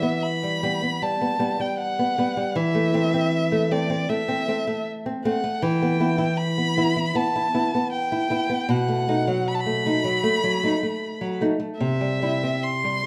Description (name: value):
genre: romantic duo for violin and classical guitar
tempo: 78 BPM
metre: 4/4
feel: rubato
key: E minor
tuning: A4 = 440 Hz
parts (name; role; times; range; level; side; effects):
- rich violin; melody; 0.0-13.1 s; D5 to C6; -28 LUFS; equal; none
- nylon-string guitar; accompaniment; 0.0-13.1 s; B2 to E4; -25 LUFS; equal; none
room: moderate recital hall reverb, RT60 1.4 s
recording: none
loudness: -23 LUFS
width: mono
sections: 0.0-13.1 A section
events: none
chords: 0.0 Em; 2.6 Am/E; 5.6 Em; 8.7 B7; 11.8 C